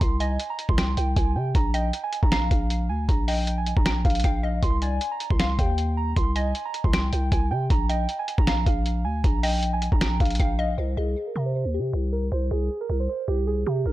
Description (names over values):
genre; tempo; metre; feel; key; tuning
hip hop, trap; 156 BPM; 4/4; half-time; C minor; A4 = 440 Hz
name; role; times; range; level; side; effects
muted felt-like synth keys; melody; 0.0-13.9 s; G4 to C6; -29 LUFS; right 3 dB; chorus, low-pass filter, digital delay
growling 808-style bass; bass; 0.0-13.9 s; Bb1 to C3; -25 LUFS; equal; none
lo-fi sampler-style drum kit; drums; 0.0-10.5 s; finger snaps, hi-hat, kick drum, snare drum; -23 LUFS; equal; none
hollow square pluck; second line; 0.2-10.8 s; D5 to G5; -34 LUFS; left 2 dB; chorus, digital delay
room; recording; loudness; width
little or no reverb; dark, warm production; -22 LUFS; side -16 dB against mid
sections
0.0-10.8 A section; 10.8-13.9 B section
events
none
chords
0.0 Cm; 1.5 Bb5; 4.6 Cm; 7.7 Bb5; 10.8 C5